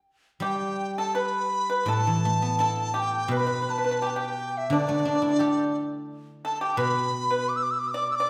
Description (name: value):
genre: chinese traditional, Chinese chamber ensemble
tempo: 85 BPM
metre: 4/4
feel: rubato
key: G gong mode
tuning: A4 = 440 Hz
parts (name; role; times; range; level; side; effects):
- mellow hollow dizi; melody; 0.4-8.3 s; D5 to E6; -30 LUFS; equal; none
- pipa; second line; 0.4-8.3 s; D4 to D5; -31 LUFS; equal; none
- guzheng; accompaniment; 0.4-8.3 s; A2 to A4; -31 LUFS; equal; none
room: wet recital hall reverb, RT60 1.5 s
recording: heard from further back in the room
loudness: -26 LUFS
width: mono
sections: 0.4-8.3 A section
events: none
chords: none